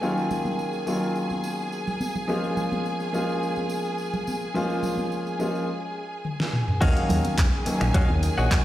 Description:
nu-disco, nu disco; 106 BPM; 4/4; straight; Eb minor; A4 = 442 Hz
warm baby grand piano; accompaniment; 0.0-8.6 s; Eb3 to F5; -27 LUFS; equal; sidechain pumping, dub echo
warm studio violin section; sustained chords; 0.0-8.6 s; Ab4 to Ab5; -32 LUFS; equal; sidechain pumping
tambourine and congas; percussion; 0.0-8.6 s; -34 LUFS; right 1 dB
pop drum kit; drums; 6.2-8.6 s; crash cymbal, finger snaps, handclaps, hi-hat, snare drum, toms; -27 LUFS; equal; overdrive, low-pass filter on hats, low-pass filter on snare, low-pass filter on toms, low-pass filter on cymbals, low-pass filter on room
direct-recorded clean electric guitar; riff; 6.8-8.6 s; Gb4 to Gb5; -30 LUFS; left 2 dB; lush chorus, dub echo
fingered electric bass with an envelope filter; bass; 6.8-8.5 s; Bb1 to Eb2; -24 LUFS; equal; sidechain pumping
electronic kick drum; drums; 6.8-8.6 s; -21 LUFS; equal; overdrive
moderate echo chamber reverb, RT60 1.7 s; played on a big sound system in a bare room, stone room reverb; -23 LUFS; side -14 dB against mid
0.0-6.8 A section; 6.8-8.6 B section
drum fill 6.2-6.8; drop 6.8-8.6
0.0 Ebm9; 2.3 Bbm7; 6.8 Ebm9

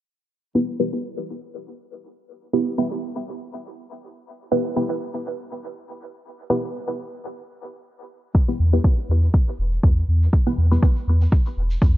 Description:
dub techno; 121 BPM; 4/4; swing 55% on 16ths; E minor; A4 = 440 Hz
filtered dub chord stab; stabs; 0.5-11.0 s; B3 to B4; -25 LUFS; equal; phaser, sidechain pumping, dub echo
electronic kick drum; drums; 8.3-11.9 s; -16 LUFS; equal
egg shaker; percussion; 8.3-11.9 s; -53 LUFS; right 2 dB
soft dub sub bass; bass; 8.6-12.0 s; E1 to E2; -18 LUFS; equal; sidechain pumping
light reverb; bright 1980s-style digital production, low-pass filter; -19 LUFS; side -14 dB against mid
0.4-12.0 A section
filter sweep on synth stab 0.4-12.0; filter sweep 0.4-12.0
0.4 Em

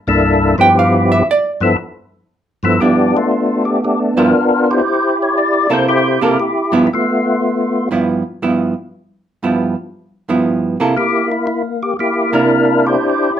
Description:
jazz; 118 BPM; 4/4; swing 68% on 8ths; G mixolydian; A4 = 441 Hz
percussive tonewheel organ; melody; 0.1-7.9, 11.0-13.4 s; C2 to D5; -13 LUFS; left 1 dB; slow rotary speaker, overdrive, chorus vibrato
archtop guitar, miked and amplified; accompaniment; 0.6-13.0 s; G2 to G5; -14 LUFS; right 3 dB
wet club reverb, RT60 0.7 s; -12 LUFS; side -10 dB against mid
0.0-2.8 A section; 2.8-13.4 B section
hollow-body jazz guitar solo 0.0-2.8
0.0 C13; 0.8 G13; 11.0 C9

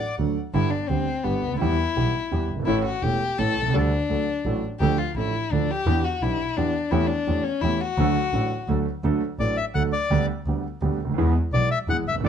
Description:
tango; 170 BPM; 3/4; rubato; D major from 9.1 s; A4 = 439 Hz
bandoneon; melody; 0.0-0.2, 9.4-12.3 s; D5 to F#5; -25 LUFS; left 4 dB; plate reverb
warm violin; second line; 0.0-8.7 s; B3 to F#5; -26 LUFS; left 6 dB
warm concert grand piano; accompaniment; 0.2-12.3 s; E1 to A4; -25 LUFS; right 3 dB
rich double bass; bass; 0.2-12.3 s; E1 to E2; -27 LUFS; equal
light reverb; dark, warm production, nothing above 10.9 kHz; -21 LUFS; side -8 dB against mid
0.5-9.1 A section; 9.1-12.3 B section
violin solo 0.5-9.1
0.0 D; 0.5 G; 1.6 Em; 2.7 A; 3.7 Dsus4; 4.1 D; 4.8 Dm; 5.9 Em7; 6.9 A7/E; 8.0 D; 10.1 G/D; 11.2 E

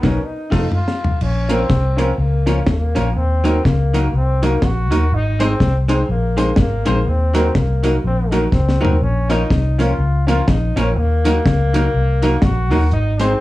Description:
ska; 123 BPM; 4/4; swing 59% on 8ths; Eb dorian; A4 = 442 Hz
bright trombone; melody; 0.0-13.4 s; Bb3 to Gb4; -23 LUFS; left 1 dB; plate reverb
vintage hollow-body jazz guitar; accompaniment; 0.0-13.3 s; F3 to D#4; -23 LUFS; right 2 dB; plate reverb
warm upright piano; stabs; 0.0-13.3 s; B3 to C5; -22 LUFS; left 1 dB; plate reverb, analog delay
vintage muted fingered electric bass; bass; 0.0-13.3 s; F1 to Eb2; -17 LUFS; equal
deep reggae drum kit; drums; 0.0-13.3 s; crash cymbal, hi-hat, kick drum, snare drum, toms; -19 LUFS; equal
light reverb; cassette tape, studio ambience; -14 LUFS; side -17 dB against mid
0.0-1.2 A section; 1.2-13.4 B section
band accent 0.0-1.2; drum fill 0.2-1.2, 8.5-9.0
0.2 F7; 1.2 Bbm; 3.2 Ebm; 5.1 Ab; 7.1 Ebm; 9.0 Bbm; 11.0 Ebm

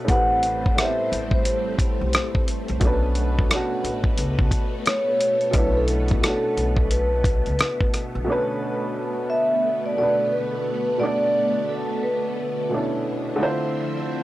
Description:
lo-fi hip hop; 88 BPM; 4/4; swing 63% on 16ths; B phrygian, B minor from 8.3 s; A4 = 438 Hz
dark upright piano; accompaniment; 0.0-14.2 s; A2 to D5; -26 LUFS; right 1 dB; cassette tape, low-pass filter
string machine, full ensemble; sustained chords; 0.0-14.2 s; B2 to E5; -31 LUFS; equal; phaser, ensemble chorus, low-pass filter
vibraphone with soft mallets; melody; 0.1-12.7 s; A4 to F#5; -23 LUFS; equal; low-pass filter
upright bass; bass; 0.1-8.3 s; A1 to C#2; -26 LUFS; equal; transformer saturation
dusty soul sampler-style drum kit; drums; 0.1-8.1 s; hi-hat, kick drum, rim click; -21 LUFS; equal
light reverb; dry, gritty hardware recording; -20 LUFS; side -16 dB against mid
0.0-8.3 A section; 8.3-14.2 B section
break 13.7-14.2
0.1 Am9; 2.8 Bm9; 13.4 Dm9

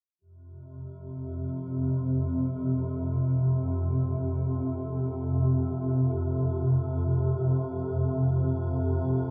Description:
ambient; free time; A4 = 440 Hz
deep dark ambient pad; sustained chords; 1.0-9.3 s; F4 to G5; -47 LUFS; equal
swarming drone; drone; 0.8-9.3 s; F2 to C3; -28 LUFS; equal; built-in reverb
wet cathedral reverb, RT60 5.3 s; dark, warm production; -28 LUFS; mono
0.2-9.3 A section
0.2 Fsus2

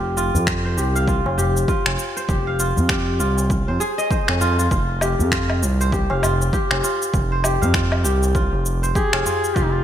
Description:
organic downtempo; 99 BPM; 4/4; swing 59% on 16ths; F minor; A4 = 441 Hz
kora; arpeggios; 0.0-9.8 s; F4 to F5; -23 LUFS; equal; low-pass filter, digital delay
smooth gliding synth bass; bass; 0.0-9.8 s; F1 to F2; -21 LUFS; equal; sidechain pumping
electronic shaker, finger snaps and woodblock; drums; 0.2-9.7 s; -25 LUFS; left 1 dB; overdrive
tabla; percussion; 0.3-9.4 s; -29 LUFS; left 1 dB
electronic kick drum; drums; 0.5-9.7 s; -24 LUFS; equal; overdrive
warm duduk; melody; 9.0-9.8 s; Eb4 to Ab4; -22 LUFS; left 1 dB; digital delay
moderate lush hall reverb, RT60 1.9 s; bright 1980s-style digital production; -17 LUFS; side -10 dB against mid
0.0-9.8 A section
0.0 Fm9

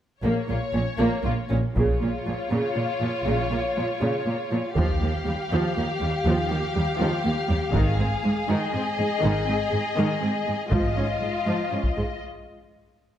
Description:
cinematic, epic orchestral film score; 80 BPM (dotted quarters); 6/8; straight; Bb dorian; A4 = 439 Hz
rich symphonic violin section; melody; 0.2-12.2 s; Db5 to F5; -31 LUFS; left 4 dB
warm symphonic violin section; second line; 0.2-12.2 s; Bb3 to Ab4; -30 LUFS; left 3 dB
rich symphonic viola section; accompaniment; 0.2-12.0 s; Db3 to Db4; -29 LUFS; right 1 dB
rich symphonic cello section; bass; 0.2-12.0 s; Eb2 to Bb2; -27 LUFS; right 2 dB
rich symphonic double bass section; bass; 0.2-10.9 s; Ab1 to Eb2; -28 LUFS; right 2 dB
taiko ensemble; drums; 1.8-12.1 s; -28 LUFS; equal
moderate scoring stage reverb, RT60 1.6 s; -22 LUFS; side -10 dB against mid
0.2-1.8 A section; 1.8-13.2 B section
break 12.2-13.2
0.2 Bbm; 4.8 Ebadd9; 7.7 Ab5; 10.7 Dbadd9/Ab (rootless); 12.2 N.C.

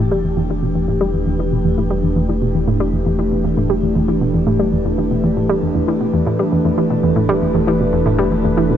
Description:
ambient, sequencer-driven space music; 117 BPM; 4/4; straight; E minor; A4 = 440 Hz
sweeping resonant pad; sustained chords; 0.0-8.8 s; E3 to B4; -18 LUFS; equal; chorus
analog pluck; riff; 0.0-8.8 s; E2 to G3; -18 LUFS; equal; chorus, ping-pong delay
round analog bass; bass; 0.0-8.8 s; E1; -24 LUFS; equal
moderate huge ambient reverb, RT60 7.9 s; nothing above 7.5 kHz; -14 LUFS; side -10 dB against mid
0.0-8.8 A section
0.0 Em7

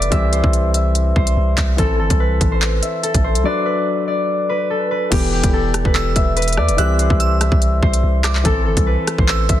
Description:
hip hop, drill; 144 BPM; 4/4; half-time; E minor; A4 = 441 Hz
concert harp; melody; 0.0-9.6 s; G4 to E5; -20 LUFS; left 1 dB; low-pass filter, ping-pong delay
warm concert grand piano; accompaniment; 0.0-9.6 s; E3 to B4; -24 LUFS; left 4 dB; low-pass filter
long sustained 808-style bass; bass; 0.0-9.6 s; E1 to E2; -18 LUFS; equal
drill drum kit; drums; 0.0-9.6 s; crash cymbal, handclaps, hi-hat, kick drum, rim click; -18 LUFS; equal
glassy synth bell; second line; 6.0-9.6 s; D6 to F#6; -27 LUFS; right 5 dB; chorus, ping-pong delay
light reverb, digital ambience; dense, heavily limited modern master; -14 LUFS; side -12 dB against mid
0.0-5.1 A section; 5.1-9.6 B section
break 3.5-5.1
0.1 C; 1.8 Am; 3.5 Bm; 5.1 Em; 6.8 C; 8.4 Am

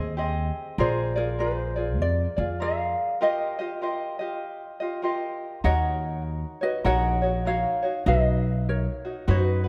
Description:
Hawaiian; 99 BPM; 4/4; swing 62% on 8ths; Eb major, Eb minor from 5.6 s; A4 = 441 Hz
ukulele; melody; 0.0-9.7 s; F#4 to Ab5; -30 LUFS; equal
tenor ukulele; accompaniment; 0.0-9.7 s; C4 to Eb5; -32 LUFS; equal
upright bass; bass; 0.0-9.7 s; Bb1 to F#2; -28 LUFS; equal
moderate concert hall reverb, RT60 2.3 s; -26 LUFS; mono
0.0-5.6 A section; 5.6-9.7 B section
break 3.2-5.6
0.0 Abmaj7; 0.8 Bb7; 3.2 Ebadd9; 5.6 Ebm7; 8.1 Bmaj7

